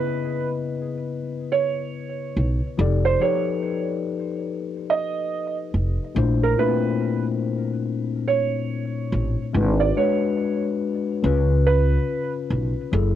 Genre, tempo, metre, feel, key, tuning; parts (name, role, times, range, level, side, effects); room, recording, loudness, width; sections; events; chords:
lo-fi hip hop; 71 BPM; 4/4; swing 62% on 16ths; A4 = 440 Hz
felt-muted upright piano; melody; 0.0-12.3 s; A#4 to Eb5; -24 LUFS; right 7 dB; low-pass filter, cassette tape, tape echo
tine electric piano; accompaniment; 0.0-13.2 s; A#2 to D#5; -25 LUFS; left 6 dB; low-pass filter, cassette tape
upright bass; bass; 2.4-13.2 s; F1 to C#2; -20 LUFS; right 1 dB
moderate booth ambience, RT60 0.2 s; home recording on cassette; -21 LUFS; side -11 dB against mid
0.0-13.2 A section
0.0 C#m9; 2.8 F13; 6.2 A#maj9#11; 9.5 G#m7b5; 11.2 C#7